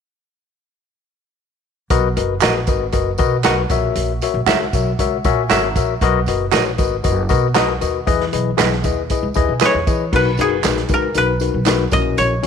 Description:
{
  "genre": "uptempo 1960s-style soul",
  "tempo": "117 BPM",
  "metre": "4/4",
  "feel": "straight",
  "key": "B major",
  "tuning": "A4 = 440 Hz",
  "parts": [
    { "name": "tine electric piano", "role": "accompaniment", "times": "1.9-12.5 s", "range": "A#2 to A#5", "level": "-19 LUFS", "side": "left 11 dB", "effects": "none" },
    { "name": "upright bass", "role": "bass", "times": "1.9-12.5 s", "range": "F#1 to E3", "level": "-22 LUFS", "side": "right 2 dB", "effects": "none" },
    { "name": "vintage drum kit", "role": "drums", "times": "1.9-12.5 s", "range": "crash cymbal, hi-hat, kick drum, snare drum", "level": "-21 LUFS", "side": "right 2 dB", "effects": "none" },
    { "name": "tambourine and handclaps", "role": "percussion", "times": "1.9-12.5 s", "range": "none", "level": "-26 LUFS", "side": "right 14 dB", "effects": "none" },
    { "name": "semi-hollow electric guitar", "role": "stabs", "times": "2.4-9.7 s", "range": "F#4 to E5", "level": "-22 LUFS", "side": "right 13 dB", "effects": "none" },
    { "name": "koto", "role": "melody", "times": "9.7-12.5 s", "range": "G#4 to D#5", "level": "-19 LUFS", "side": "equal", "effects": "slapback echo" }
  ],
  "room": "light reverb, small room ambience",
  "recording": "1960s-style stereo with parts hard left and right",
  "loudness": "-15 LUFS",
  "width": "side -7 dB against mid",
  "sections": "1.9-10.1 A section; 10.1-12.5 B section",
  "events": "tine electric piano fill 4.5-6.0, 9.1-10.1",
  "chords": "1.9 Bmaj7; 3.7 F#7/A#; 6.0 Bmaj7; 8.1 Emaj7; 10.1 Bmaj7; 11.9 F#7/A#"
}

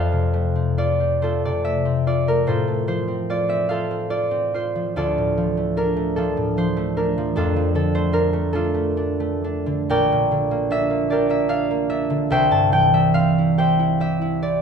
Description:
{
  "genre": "classical, solo harp piece",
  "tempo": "49 BPM (dotted quarters)",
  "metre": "6/8",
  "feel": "uneven beats, rubato",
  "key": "F major",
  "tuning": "A4 = 439 Hz",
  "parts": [
    { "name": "concert harp", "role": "solo", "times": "0.0-14.6 s", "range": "Bb1 to A5", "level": "-18 LUFS", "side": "equal", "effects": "none" }
  ],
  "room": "wet recital hall reverb, RT60 1.5 s",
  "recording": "recorded in a church or concert hall",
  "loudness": "-18 LUFS",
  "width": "side -6 dB against mid",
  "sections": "0.0-14.6 A section",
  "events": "none",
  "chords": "0.0 F; 2.5 F/A; 5.0 Dm; 7.4 Dm/F; 9.9 Gm/Bb; 12.3 C"
}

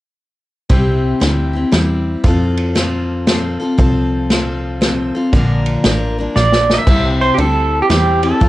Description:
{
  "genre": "honky-tonk and classic country",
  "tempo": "117 BPM",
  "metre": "3/4",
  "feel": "swing 64% on 8ths",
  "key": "C mixolydian",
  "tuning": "A4 = 439 Hz",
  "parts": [
    { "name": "picked steel-string acoustic guitar", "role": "accompaniment", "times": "0.7-8.5 s", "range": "Bb2 to Bb4", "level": "-18 LUFS", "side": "left 2 dB", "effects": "cassette tape" },
    { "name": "plucky analog bass", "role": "bass", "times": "0.7-8.5 s", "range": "A1 to F2", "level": "-18 LUFS", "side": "equal", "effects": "none" },
    { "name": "unplugged drum kit", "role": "drums", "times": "0.7-8.5 s", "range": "crash cymbal, kick drum, ride cymbal, snare drum", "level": "-16 LUFS", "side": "equal", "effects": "cassette tape" },
    { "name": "pedal steel guitar", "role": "second line", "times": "6.4-8.5 s", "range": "G4 to E5", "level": "-15 LUFS", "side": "right 3 dB", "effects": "cassette tape, plate reverb" }
  ],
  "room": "moderate booth ambience, RT60 0.2 s",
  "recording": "home recording on cassette",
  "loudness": "-12 LUFS",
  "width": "side -16 dB against mid",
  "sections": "0.7-6.9 A section; 6.9-8.5 B section",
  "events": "drum fill 6.4-6.9; pedal steel guitar solo 6.9-8.5",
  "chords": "0.7 C; 2.2 F; 5.3 Bb; 6.9 C"
}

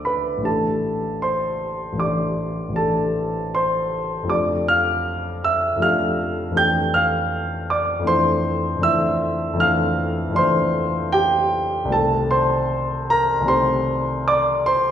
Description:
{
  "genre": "classical, impressionist solo piano",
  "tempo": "78 BPM",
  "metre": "5/4",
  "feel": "rubato",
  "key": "D minor",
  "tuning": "A4 = 440 Hz",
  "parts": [
    { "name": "warm concert grand piano", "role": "solo", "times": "0.0-14.9 s", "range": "A1 to G6", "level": "-18 LUFS", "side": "equal", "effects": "none" }
  ],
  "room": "wet recital hall reverb, RT60 1.7 s",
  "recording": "heard from further back in the room",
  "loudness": "-18 LUFS",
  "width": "side -9 dB against mid",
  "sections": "0.0-14.9 A section",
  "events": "none",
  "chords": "0.5 A7sus4; 4.3 F69; 8.1 Dm9/F; 11.9 Cm6"
}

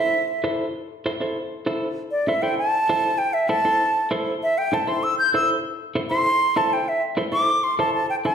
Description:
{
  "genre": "latin",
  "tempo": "196 BPM",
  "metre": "4/4",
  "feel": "straight",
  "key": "A minor",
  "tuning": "A4 = 440 Hz",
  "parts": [
    { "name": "reedy concert flute", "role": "melody", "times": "0.0-8.3 s", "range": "D5 to G6", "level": "-20 LUFS", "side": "equal", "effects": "none" },
    { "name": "clean electric guitar", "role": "accompaniment", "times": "0.0-8.3 s", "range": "E4 to C5", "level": "-26 LUFS", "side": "equal", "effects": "none" }
  ],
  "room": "wet recital hall reverb, RT60 1.3 s",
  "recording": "recorded in a church or concert hall",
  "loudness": "-20 LUFS",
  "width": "side -7 dB against mid",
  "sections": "0.0-8.1 A section",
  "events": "flute solo 0.0-8.1",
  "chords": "0.0 Am"
}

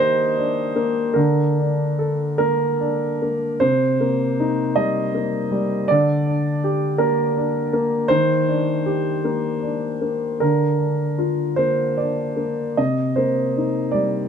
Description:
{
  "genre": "neoclassical minimalist piano",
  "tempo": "48-55 BPM (dotted quarters)",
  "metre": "6/8",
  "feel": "rubato",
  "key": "C minor",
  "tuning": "A4 = 440 Hz",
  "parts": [
    { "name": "warm upright piano", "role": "solo", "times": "0.0-14.3 s", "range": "C3 to Eb5", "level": "-18 LUFS", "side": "equal", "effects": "none" }
  ],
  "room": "little or no reverb",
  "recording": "close, detailed microphones",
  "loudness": "-18 LUFS",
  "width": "side -7 dB against mid",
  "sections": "0.0-3.6 A section; 3.6-14.3 A section",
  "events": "none",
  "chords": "0.0 Ebmaj7; 1.2 Bbmaj7/D; 3.6 Cm7; 5.9 Gm/D; 8.1 Ebmaj7; 10.4 Bb/D; 12.8 Cm7"
}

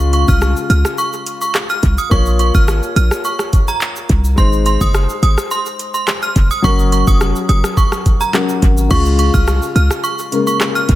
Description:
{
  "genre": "dancehall",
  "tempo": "106 BPM",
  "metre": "4/4",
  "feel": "straight",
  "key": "unclear",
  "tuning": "A4 = 441 Hz",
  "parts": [
    { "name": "warm grand piano", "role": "accompaniment", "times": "0.0-11.0 s", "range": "Db3 to Db5", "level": "-21 LUFS", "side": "left 4 dB", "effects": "sidechain pumping, dub echo" },
    { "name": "warm 808-style bass", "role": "bass", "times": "0.0-11.0 s", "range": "F1 to Db2", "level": "-13 LUFS", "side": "equal", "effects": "none" },
    { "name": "island pop drum kit", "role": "drums", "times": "0.0-11.0 s", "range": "crash cymbal, handclaps, hi-hat, kick drum, rim click, shaker", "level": "-16 LUFS", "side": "equal", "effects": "dub echo" },
    { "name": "synth chime", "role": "melody", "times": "0.1-10.8 s", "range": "Bb5 to F6", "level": "-19 LUFS", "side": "right 2 dB", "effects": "ensemble chorus, dub echo" }
  ],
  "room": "little or no reverb",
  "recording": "echo-heavy mix",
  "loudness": "-12 LUFS",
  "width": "side -15 dB against mid",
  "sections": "0.0-8.9 A section; 8.9-11.0 A section",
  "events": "none",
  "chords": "0.0 Db; 2.1 Bbm; 4.4 Ab; 6.6 Gb; 8.9 Db"
}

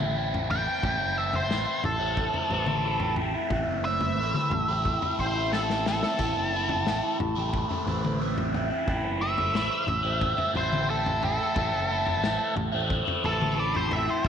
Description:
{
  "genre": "psychedelic rock",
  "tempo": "90 BPM",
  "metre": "4/4",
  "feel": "straight",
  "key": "A dorian",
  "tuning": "A4 = 439 Hz",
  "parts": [
    { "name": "overdriven electric guitar", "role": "riff", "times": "0.0-14.3 s", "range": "A2 to E4", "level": "-28 LUFS", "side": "equal", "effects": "phaser" },
    { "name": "picked electric bass", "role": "bass", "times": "0.0-14.3 s", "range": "F#1 to A1", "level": "-32 LUFS", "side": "right 1 dB", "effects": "none" },
    { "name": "vintage drum kit", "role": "drums", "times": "0.0-14.3 s", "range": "kick drum, snare drum, splash cymbal, toms", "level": "-32 LUFS", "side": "left 2 dB", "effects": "none" },
    { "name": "octave-fuzz lead guitar", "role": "melody", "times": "0.5-14.3 s", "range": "A4 to G5", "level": "-29 LUFS", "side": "equal", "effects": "wah, distortion, tape echo" }
  ],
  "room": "moderate echo chamber reverb, RT60 1.6 s, studio reverb",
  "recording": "1960s-style stereo",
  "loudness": "-24 LUFS",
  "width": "side -8 dB against mid",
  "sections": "0.0-14.3 A section",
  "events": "lead electric guitar solo 0.0-14.3; drum fill 5.5-6.2",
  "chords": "0.0 Am"
}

